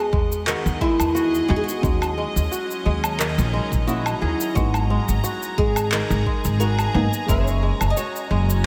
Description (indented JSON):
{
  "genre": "organic downtempo",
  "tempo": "88 BPM",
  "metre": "4/4",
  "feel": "swing 54% on 16ths",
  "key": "G# minor",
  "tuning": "A4 = 440 Hz",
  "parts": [
    { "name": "oud", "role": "melody", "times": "0.0-8.7 s", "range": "E4 to D#5", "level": "-28 LUFS", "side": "equal", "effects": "tape echo, slapback echo" },
    { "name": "deep mellow chord stab", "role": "accompaniment", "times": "0.0-8.7 s", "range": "F#3 to E5", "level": "-32 LUFS", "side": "equal", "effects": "chorus, sidechain pumping, tape echo, slapback echo" },
    { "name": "clear studio string section", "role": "sustained chords", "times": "0.0-8.7 s", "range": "F#3 to A#5", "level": "-34 LUFS", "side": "equal", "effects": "sidechain pumping" },
    { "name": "kora", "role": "arpeggios", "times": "0.0-8.7 s", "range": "D#3 to G#4", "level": "-31 LUFS", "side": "equal", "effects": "tape echo, slapback echo" },
    { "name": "upright bass", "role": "bass", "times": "0.1-8.7 s", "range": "F#1 to E2", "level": "-24 LUFS", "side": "equal", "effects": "sidechain pumping" },
    { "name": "electronic kick drum", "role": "drums", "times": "0.1-7.4 s", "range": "none", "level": "-26 LUFS", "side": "equal", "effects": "none" },
    { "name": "electronic cabasa, handclaps and woodblock", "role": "drums", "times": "0.3-8.6 s", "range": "none", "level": "-30 LUFS", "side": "equal", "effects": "none" },
    { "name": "drifting glass-harmonics texture", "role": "texture", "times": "5.1-8.7 s", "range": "G#5", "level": "-40 LUFS", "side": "equal", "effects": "chorus, built-in reverb" }
  ],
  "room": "moderate lush hall reverb, RT60 2.6 s",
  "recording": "big arena sound",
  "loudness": "-22 LUFS",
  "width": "mono",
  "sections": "0.0-8.7 A section",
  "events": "none",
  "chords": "0.0 Emaj7; 1.8 D#m7; 4.6 G#m9; 7.3 F#7"
}